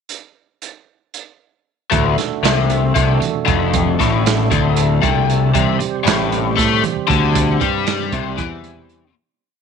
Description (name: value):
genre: psychedelic rock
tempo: 232 BPM (eighths)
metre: 7/8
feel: straight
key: D mixolydian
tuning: A4 = 441 Hz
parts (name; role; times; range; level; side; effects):
- crunchy breakbeat drum kit; drums; 0.1-9.0 s; hi-hat, kick drum, snare drum; -21 LUFS; right 6 dB; none
- tonewheel organ; sustained chords; 1.9-9.1 s; C3 to C5; -24 LUFS; right 12 dB; overdrive, chorus vibrato, slow rotary speaker
- overdriven electric guitar; riff; 1.9-9.1 s; D2 to A3; -17 LUFS; left 8 dB; flanger
- fuzz picked electric bass; bass; 1.9-9.1 s; D1 to A2; -21 LUFS; right 2 dB; overdrive
- congas; percussion; 1.9-8.9 s; none; -30 LUFS; right 11 dB; none
room: light reverb, studio reverb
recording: 1960s-style stereo with parts hard left and right, nothing above 10.8 kHz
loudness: -14 LUFS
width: side -6 dB against mid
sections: 0.1-1.9 pickup bar; 1.9-9.2 riff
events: fade-out 7.3-9.2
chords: 0.1 N.C.; 1.9 D; 5.5 C5